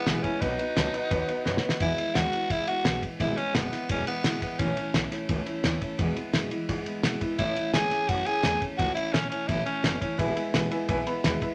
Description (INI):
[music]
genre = rockabilly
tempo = 172 BPM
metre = 4/4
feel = straight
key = E major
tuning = A4 = 441 Hz
[part]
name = raspy tenor saxophone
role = melody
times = 0.0-4.9, 7.4-10.5 s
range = B3 to G#4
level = -32 LUFS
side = equal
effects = none
[part]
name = picked steel-string acoustic guitar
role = accompaniment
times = 0.0-11.5 s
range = E2 to F#4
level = -35 LUFS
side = equal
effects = none
[part]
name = bright upright piano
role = accompaniment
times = 0.1-1.7, 10.2-11.5 s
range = B4 to B5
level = -34 LUFS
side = equal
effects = none
[part]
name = upright bass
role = bass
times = 0.1-11.4 s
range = E1 to B2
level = -37 LUFS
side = equal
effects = none
[part]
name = cloth-damped thuddy drum kit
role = drums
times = 0.1-11.5 s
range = kick drum, ride cymbal, snare drum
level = -32 LUFS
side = equal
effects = none
[sound]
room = wet studio reverb, RT60 0.5 s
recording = none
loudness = -28 LUFS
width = mono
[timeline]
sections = 0.0-1.8 A section; 1.8-11.5 A section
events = drum fill 1.5-1.8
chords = 0.4 B; 1.8 E; 4.6 A; 6.0 E; 7.4 A; 10.2 E